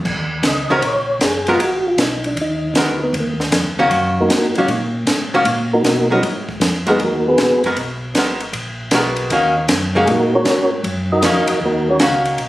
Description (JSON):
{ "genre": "soul jazz organ trio", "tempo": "156 BPM", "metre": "4/4", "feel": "swing 66% on 8ths", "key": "Eb minor", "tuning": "A4 = 442 Hz", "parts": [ { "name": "mellow tonewheel organ", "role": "bass", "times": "0.0-12.5 s", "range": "Gb1 to Cb3", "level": "-24 LUFS", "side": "equal", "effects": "slow rotary speaker" }, { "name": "compact cocktail drum kit", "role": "drums", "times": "0.1-12.5 s", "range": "crash cymbal, hi-hat, kick drum, ride cymbal, snare drum", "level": "-21 LUFS", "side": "equal", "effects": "none" }, { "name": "percussive tonewheel organ", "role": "melody", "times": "0.5-7.6, 10.0-12.0 s", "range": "Gb3 to Eb5", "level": "-16 LUFS", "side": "equal", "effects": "slow rotary speaker, chorus vibrato" }, { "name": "archtop guitar, miked and amplified", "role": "accompaniment", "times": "0.7-12.4 s", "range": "Eb3 to Bb4", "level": "-17 LUFS", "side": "equal", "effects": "none" } ], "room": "moderate studio reverb, RT60 0.7 s", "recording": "recorded on a phone in the room, studio reverb", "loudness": "-14 LUFS", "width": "side -16 dB against mid", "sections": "0.1-12.5 A section", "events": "tonewheel organ solo 0.1-12.5", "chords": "0.1 Ebm7; 1.6 Abm9; 3.1 Ebm7; 6.2 Abm9; 9.3 Ebm7" }